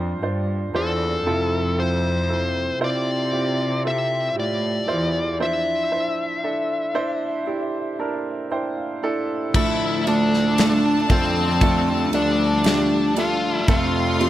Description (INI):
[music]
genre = pop ballad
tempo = 58 BPM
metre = 4/4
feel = straight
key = unclear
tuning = A4 = 440 Hz
[part]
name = warm baby grand piano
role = accompaniment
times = 0.0-14.3 s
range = A2 to A5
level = -25 LUFS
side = right 3 dB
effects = none
[part]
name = warm studio cello section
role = bass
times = 0.0-14.3 s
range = D2 to C3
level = -25 LUFS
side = equal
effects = none
[part]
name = dark smooth lead guitar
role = melody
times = 0.8-14.3 s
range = C4 to F5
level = -23 LUFS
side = left 2 dB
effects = overdrive
[part]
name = warm studio violin section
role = second line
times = 9.5-14.3 s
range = A5 to C6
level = -28 LUFS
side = left 1 dB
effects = tape echo
[part]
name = warm studio string section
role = sustained chords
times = 9.5-14.3 s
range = C3 to D4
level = -29 LUFS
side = left 2 dB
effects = none
[part]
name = modern studio drum kit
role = drums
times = 9.5-14.3 s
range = crash cymbal, kick drum, ride cymbal, snare drum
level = -22 LUFS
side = left 1 dB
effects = none
[sound]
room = little or no reverb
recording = none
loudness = -19 LUFS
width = side -13 dB against mid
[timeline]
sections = 0.0-9.5 A section; 9.5-14.3 B section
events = break 5.4-9.5; grand piano fill 7.5-9.5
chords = 0.0 Dm7/F; 1.3 Fmaj7; 5.4 Cadd9/F; 9.5 Dm; 13.7 F